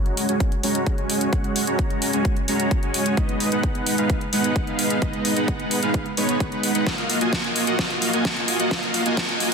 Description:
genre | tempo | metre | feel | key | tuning
EDM, festival progressive house | 130 BPM | 4/4 | straight | unclear | A4 = 440 Hz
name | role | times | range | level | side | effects
dense compressed supersaw | riff | 0.0-9.5 s | G#3 to A#5 | -22 LUFS | right 1 dB | sidechain pumping, low-pass filter, tape echo
pop drum kit | drums | 0.1-9.5 s | hi-hat, snare drum | -26 LUFS | left 1 dB | overdrive
electronic kick drum | drums | 0.4-9.3 s | none | -24 LUFS | equal | none
room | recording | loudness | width
moderate lush hall reverb, RT60 1.6 s | dense, heavily limited modern master, high-pass filter | -20 LUFS | side -5 dB against mid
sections
0.0-9.5 A section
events
build-up 0.0-9.5; filter sweep on supersaw synth 0.0-9.5; filter sweep 0.0-9.5; drum fill 6.9-9.5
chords
0.0 C#sus4; 3.2 G#m; 6.9 D#madd9

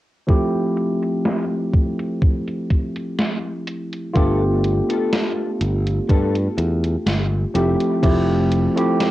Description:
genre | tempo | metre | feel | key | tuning
vaporwave | 62 BPM | 4/4 | swing 53% on 16ths | unclear | A4 = 440 Hz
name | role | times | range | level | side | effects
bright tine electric piano | accompaniment | 0.3-9.1 s | F3 to G4 | -21 LUFS | equal | lush chorus, vintage 12-bit sampler grit, analog delay, plate reverb
electronic kick drum | drums | 0.3-8.2 s | none | -17 LUFS | equal | cassette tape
gated 80s digital drum machine | drums | 0.3-9.1 s | crash cymbal, hi-hat, snare drum | -25 LUFS | equal | gated reverb, gated reverb snare, low-pass filter on hats, cassette tape, low-pass filter on snare, low-pass filter on cymbals, low-pass filter on room
mellow electric guitar | riff | 4.1-7.9 s | A3 to A4 | -27 LUFS | left 7 dB | ensemble chorus, analog delay
modern bright fingered electric bass | bass | 4.2-8.7 s | F1 to G2 | -20 LUFS | equal | none
room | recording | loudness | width
light reverb | home recording on cassette | -17 LUFS | side -15 dB against mid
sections
0.3-8.0 A section; 8.0-9.1 B section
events
filter sweep on drum 0.3-8.0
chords
0.3 Fmaj9; 4.2 G9; 7.5 Fmaj9

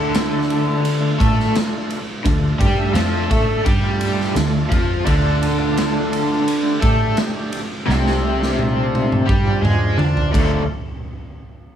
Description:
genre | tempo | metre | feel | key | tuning
blues rock power trio and southern rock | 85 BPM | 4/4 | straight | D minor | A4 = 440 Hz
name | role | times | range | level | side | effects
overdriven tonewheel organ | sustained chords | 0.0-10.7 s | F3 to E5 | -27 LUFS | right 2 dB | slow rotary speaker
raw garage guitar | riff | 0.0-10.6 s | C3 to D5 | -20 LUFS | equal | overdrive, tremolo
vintage muted fingered electric bass | bass | 0.0-10.7 s | C2 to D3 | -21 LUFS | equal | none
raw garage drum kit | drums | 0.1-10.5 s | crash cymbal, kick drum, ride cymbal, snare drum, toms | -21 LUFS | equal | none
room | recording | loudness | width
moderate club reverb, RT60 0.8 s | none | -16 LUFS | side -9 dB against mid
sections
0.0-10.7 A section; 10.7-11.8 B section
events
drum fill 7.9-10.7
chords
0.0 Dm; 10.7 N.C.

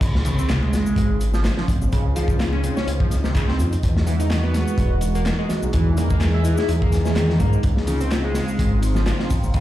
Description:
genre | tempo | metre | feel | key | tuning
breakbeat, breaks | 126 BPM | 4/4 | swing 55% on 16ths | unclear | A4 = 440 Hz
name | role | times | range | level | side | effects
phased analog pad | sustained chords | 0.3-9.6 s | Db3 to G#4 | -27 LUFS | equal | phaser, chorus, sidechain pumping
dark detuned saw bass | bass | 0.0-9.6 s | E1 to G#2 | -21 LUFS | equal | none
crunchy breakbeat drum kit | drums | 0.0-9.6 s | crash cymbal, hi-hat, kick drum, snare drum | -23 LUFS | equal | high-pass filter on kick, high-pass filter on hats, high-pass filter on cymbals, high-pass filter on snare, high-pass filter on room
house drum kit | drums | 0.0-9.6 s | handclaps, ride cymbal, shaker | -36 LUFS | left 1 dB | none
noise sweep and impact | sound effects | 0.0-1.9 s | none | -31 LUFS | equal | none
overdriven synth lead | riff | 0.3-9.6 s | C3 to E4 | -26 LUFS | right 1 dB | phaser, vintage 12-bit sampler grit, ping-pong delay
congas | percussion | 0.3-9.5 s | none | -32 LUFS | left 1 dB | none
room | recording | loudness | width
light reverb | played on a big sound system in a bare room, large studio reverb | -18 LUFS | side -14 dB against mid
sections
0.0-9.6 A section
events
drop 0.0-9.6; impact 0.0-1.9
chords
0.0 Dbmaj9; 3.8 Emaj9; 7.6 Dbmaj9

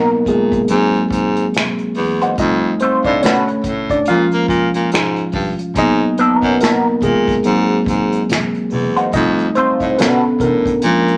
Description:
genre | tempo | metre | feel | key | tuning
R&B, neo-soul | 71 BPM | 4/4 | swing 59% on 16ths | unclear | A4 = 440 Hz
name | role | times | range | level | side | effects
clean electric guitar | second line | 0.0-10.2 s | F#3 to B#4 | -20 LUFS | equal | wah
tine electric piano | accompaniment | 0.0-11.2 s | D3 to E#5 | -18 LUFS | equal | none
bright baritone saxophone | bass | 0.1-11.2 s | E2 to A#3 | -21 LUFS | equal | none
unplugged drum kit | drums | 0.3-11.2 s | finger snaps, hi-hat, kick drum, snare drum | -25 LUFS | equal | none
congas | percussion | 5.7-11.1 s | none | -30 LUFS | equal | none
room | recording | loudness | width
moderate studio reverb, RT60 0.8 s | none | -16 LUFS | mono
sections
0.0-11.2 A section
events
tine electric piano solo 0.0-11.2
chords
0.0 G#m9; 0.7 G#9; 2.4 F7; 3.2 Bm7; 4.1 A#m7; 5.8 G#m9; 7.4 G#9; 9.1 F7; 10.0 Bm7

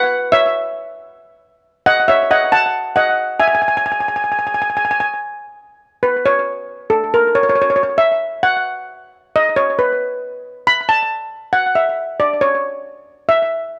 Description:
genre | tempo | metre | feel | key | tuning
calypso | 137 BPM | 4/4 | straight | unclear | A4 = 442 Hz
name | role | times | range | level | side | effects
steel pan | solo | 0.0-13.5 s | A4 to B5 | -16 LUFS | equal | slapback echo
room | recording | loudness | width
small room ambience | dry, close 1970s-style studio recording | -16 LUFS | mono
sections
0.0-5.4 A section; 5.4-13.8 B section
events
steel pan solo 5.4-13.8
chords
0.1 E5; 1.9 F#m6; 3.6 N.C.

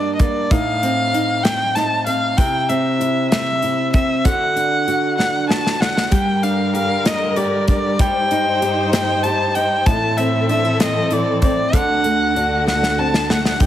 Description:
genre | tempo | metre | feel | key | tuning
six-eight pop ballad | 64 BPM (dotted quarters) | 6/8 | straight | unclear | A4 = 442 Hz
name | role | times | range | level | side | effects
rich erhu | melody | 0.0-13.7 s | D5 to A5 | -19 LUFS | left 1 dB | none
flamenco guitar | accompaniment | 0.0-13.7 s | G2 to G4 | -21 LUFS | right 1 dB | none
modern studio drum kit | drums | 0.2-13.7 s | hi-hat, kick drum, snare drum | -19 LUFS | equal | none
warm symphonic string section | sustained chords | 6.1-13.7 s | D2 to C5 | -23 LUFS | left 1 dB | none
room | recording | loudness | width
light reverb, studio reverb | heavily compressed radio sound | -15 LUFS | side -11 dB against mid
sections
0.0-13.7 A section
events
drum fill 5.2-6.1, 12.7-13.6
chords
0.0 Gm; 0.5 Adim; 2.4 C; 4.2 D; 6.1 Gm; 8.0 Cm/G; 9.9 Am; 11.7 D

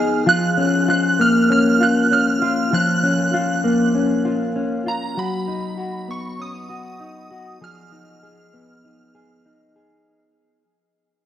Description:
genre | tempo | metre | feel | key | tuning
dream pop | 98 BPM | 4/4 | straight | F# major | A4 = 441 Hz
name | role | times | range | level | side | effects
mellow electric guitar | arpeggios | 0.0-10.6 s | E#3 to G#4 | -18 LUFS | left 2 dB | wide subtle chorus, tape echo
shimmering bell with halo | melody | 0.3-9.4 s | A#5 to F#6 | -21 LUFS | right 3 dB | ensemble chorus, phaser, tape echo
room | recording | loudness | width
moderate huge ambient reverb, RT60 5.3 s | worn, warbling old tape, cassette tape, warbly pitch drift | -16 LUFS | side -10 dB against mid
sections
0.0-10.1 A section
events
fade-out 0.0-10.1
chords
0.3 F#maj7; 5.2 B/F#; 7.6 Fm7b5

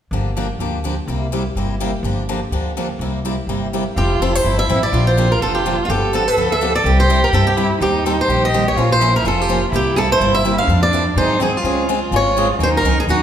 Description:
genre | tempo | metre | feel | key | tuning
acoustic string swing (jazz manouche) | 250 BPM | 4/4 | swing 55% on 8ths | F major | A4 = 440 Hz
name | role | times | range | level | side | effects
picked steel-string acoustic guitar | accompaniment | 0.1-13.2 s | C3 to C5 | -25 LUFS | right 4 dB | none
picked swing-style acoustic guitar | accompaniment | 0.1-13.2 s | C3 to C5 | -24 LUFS | left 5 dB | none
upright bass | bass | 0.1-13.2 s | F1 to Ab2 | -20 LUFS | left 1 dB | none
picked swing-style acoustic guitar | melody | 4.0-13.2 s | F4 to F5 | -18 LUFS | equal | none
dark violin | second line | 4.0-13.2 s | C4 to A4 | -21 LUFS | right 3 dB | none
room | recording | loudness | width
wet recital hall reverb, RT60 1.7 s | recorded in a church or concert hall | -15 LUFS | side -9 dB against mid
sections
0.1-4.0 A section; 4.0-11.6 B section; 11.6-13.2 C section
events
none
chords
0.1 Gm7; 1.1 C7; 2.0 Gm7; 3.0 C7; 4.0 Fmaj7; 4.9 Bb6; 5.9 G7; 6.8 C; 7.8 Eb6; 8.8 Bbmadd9; 9.7 C7; 10.7 Fmaj7; 11.2 Ab7; 11.6 Dbmaj7; 12.6 Ebm7

